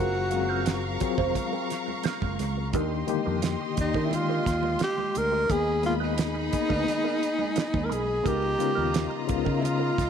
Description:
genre	lush 1970s-style soul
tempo	87 BPM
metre	4/4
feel	straight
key	Eb major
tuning	A4 = 440 Hz
part	breathy tenor saxophone	melody	0.0-10.1 s	Eb4 to Bb4	-28 LUFS	equal	tape echo
part	warm symphonic violin section	second line	0.0-10.1 s	F4 to Db6	-35 LUFS	equal	tape echo
part	barky reed electric piano	accompaniment	0.0-10.1 s	Db3 to F5	-31 LUFS	left 15 dB	overdrive, fast tremolo
part	mellow electric guitar	riff	0.0-10.0 s	Cb4 to C5	-34 LUFS	right 14 dB	wah, lush chorus
part	fingered electric bass	bass	0.0-10.1 s	F1 to Eb3	-31 LUFS	equal	none
part	congas	percussion	0.1-9.8 s	none	-39 LUFS	right 14 dB	none
part	damped 70s drum kit	drums	0.3-10.1 s	hi-hat, kick drum, snare drum	-30 LUFS	right 3 dB	none
room	light reverb, small room ambience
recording	1960s-style stereo with parts hard left and right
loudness	-24 LUFS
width	side -7 dB against mid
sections	0.0-10.1 A section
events	none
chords	0.0 Gbmaj9#11; 2.7 Ebmaj7; 5.5 Abmadd9; 8.3 Db13

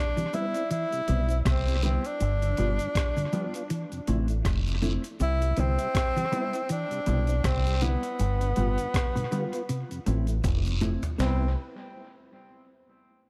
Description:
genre	roots reggae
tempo	80 BPM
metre	4/4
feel	swing 57% on 16ths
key	C major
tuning	A4 = 440 Hz
part	warm tenor saxophone	melody	0.0-11.5 s	B3 to E4	-34 LUFS	equal	tape echo
part	mellow tonewheel organ	accompaniment	0.2-11.5 s	F2 to B4	-41 LUFS	equal	chorus vibrato, slow rotary speaker, tape echo
part	clean electric guitar	arpeggios	0.2-11.4 s	G2 to G3	-35 LUFS	equal	phaser
part	breakbeat sampler-style drum kit	drums	0.2-11.4 s	hi-hat, kick drum, rim click, snare drum, toms	-33 LUFS	equal	tape echo
part	cabasa and guiro	percussion	0.2-11.5 s	none	-45 LUFS	equal	none
part	mellow electric guitar	accompaniment	0.3-11.4 s	G3 to F4	-37 LUFS	equal	phaser, tape echo
part	deep dub fingered electric bass	bass	1.1-11.5 s	F1 to C2	-28 LUFS	equal	none
room	digital ambience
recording	none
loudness	-27 LUFS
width	mono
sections	0.0-11.2 A section; 11.2-13.3 B section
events	drum fill 10.4-11.2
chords	0.0 Cmaj7; 2.2 G7; 3.7 Fmaj7; 5.2 Cmaj7; 8.2 G7; 9.7 Fmaj7; 11.2 Cmaj7

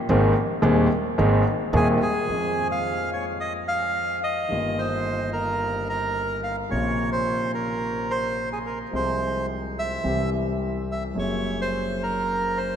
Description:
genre	tango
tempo	108 BPM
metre	4/4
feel	rubato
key	F minor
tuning	A4 = 440 Hz
part	warm concert grand piano	accompaniment	0.1-12.8 s	Eb1 to Ab4	-24 LUFS	equal	none
part	upright bass	bass	0.1-12.8 s	Gb1 to F2	-32 LUFS	right 1 dB	none
part	bandoneon	melody	1.8-12.8 s	Ab4 to F5	-26 LUFS	right 1 dB	none
room	wet cathedral reverb, RT60 5.6 s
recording	in a vast, echoing space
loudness	-22 LUFS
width	side -8 dB against mid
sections	0.0-2.3 A section; 2.3-12.8 B section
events	none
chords	0.1 Abadd9; 2.3 Fm; 4.5 Ebadd9/G; 6.7 Bbmadd9; 8.9 Fm/C; 10.0 C; 11.2 Gbadd9

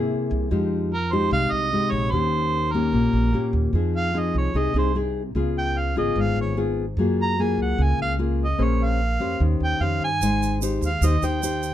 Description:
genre	bossa nova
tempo	148 BPM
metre	4/4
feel	straight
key	F minor from 3.7 s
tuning	A4 = 438 Hz
part	nylon-string guitar	accompaniment	0.0-11.7 s	Ab2 to C5	-24 LUFS	left 3 dB	none
part	upright bass	bass	0.0-11.7 s	Ab1 to G2	-25 LUFS	right 1 dB	none
part	mellow harmonica	melody	0.9-11.7 s	Bb4 to Bb5	-26 LUFS	right 4 dB	none
part	tube shaker	percussion	10.2-11.7 s	none	-34 LUFS	right 12 dB	none
room	little or no reverb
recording	close, detailed microphones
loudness	-20 LUFS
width	side -12 dB against mid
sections	0.0-3.7 A section; 3.7-11.7 B section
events	harmonica solo 3.7-11.7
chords	0.0 Caug7; 0.5 Fm9; 2.1 Eb7; 3.7 Fm7; 5.4 Db7; 7.0 Gbmaj9; 8.6 Bbm9; 9.4 Eb13; 10.2 Abmaj7

